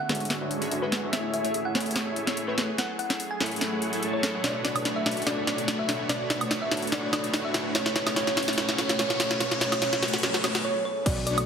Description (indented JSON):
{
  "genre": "future bass",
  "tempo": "145 BPM",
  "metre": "4/4",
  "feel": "half-time",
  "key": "F# minor",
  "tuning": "A4 = 441 Hz",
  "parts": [
    { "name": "thumb-piano-like synth pluck", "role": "melody", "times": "0.0-11.5 s", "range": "B4 to G#5", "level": "-32 LUFS", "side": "equal", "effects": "chorus, sidechain pumping, tape echo" },
    { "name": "shimmering ambient pad", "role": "sustained chords", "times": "0.0-10.6 s", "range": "D3 to C#5", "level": "-38 LUFS", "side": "right 1 dB", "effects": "none" },
    { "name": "glassy digital keys", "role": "accompaniment", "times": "0.1-10.6 s", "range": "B2 to E5", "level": "-35 LUFS", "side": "right 1 dB", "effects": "chorus, sidechain pumping" },
    { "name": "dense compressed supersaw", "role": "riff", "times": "0.1-11.5 s", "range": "G#3 to A5", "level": "-31 LUFS", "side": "equal", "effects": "sidechain pumping, low-pass filter" },
    { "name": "fat analog bass", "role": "bass", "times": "0.1-11.5 s", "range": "F#1 to A2", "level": "-40 LUFS", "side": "equal", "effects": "none" },
    { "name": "trap drum kit", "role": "drums", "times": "0.1-11.5 s", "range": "crash cymbal, hi-hat, snare drum, woodblock", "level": "-28 LUFS", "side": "equal", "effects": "overdrive" },
    { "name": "riser and swell", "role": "sound effects", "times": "6.7-11.1 s", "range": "none", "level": "-38 LUFS", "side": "left 1 dB", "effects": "none" },
    { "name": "electronic kick drum", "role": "drums", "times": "11.1 s", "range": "none", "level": "-27 LUFS", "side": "equal", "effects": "none" }
  ],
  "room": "wet digital room reverb, RT60 1.2 s, digital ambience",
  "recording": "heavily compressed radio sound",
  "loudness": "-24 LUFS",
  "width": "side -7 dB against mid",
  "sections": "0.0-11.1 A section",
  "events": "build-up 0.0-11.1; drum fill 0.0-10.6; filter sweep on supersaw synth 0.0-11.1; swell 10.2-11.1; break 10.6-11.1",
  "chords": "0.0 Dmaj9#11; 1.1 Amaj7; 2.6 F#m9; 4.4 Bm9; 6.1 Dmaj9#11; 7.8 Amaj7; 9.2 F#m9"
}